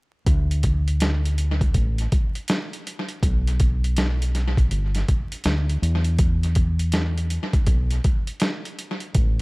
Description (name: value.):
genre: hip hop, jazz-hop.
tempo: 81 BPM.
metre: 4/4.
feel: swing 63% on 16ths.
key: unclear.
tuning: A4 = 440 Hz.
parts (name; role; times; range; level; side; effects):
deep dub fingered electric bass; bass; 0.3-9.4 s; G1 to E2; -21 LUFS; equal; none.
boom bap sampler-style drum kit; drums; 0.3-9.4 s; hi-hat, kick drum, snare drum; -22 LUFS; equal; tape echo.
room: little or no reverb.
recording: echo-heavy mix, vinyl crackle.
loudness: -20 LUFS.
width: side -26 dB against mid.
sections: 0.3-9.4 A section.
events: none.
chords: none.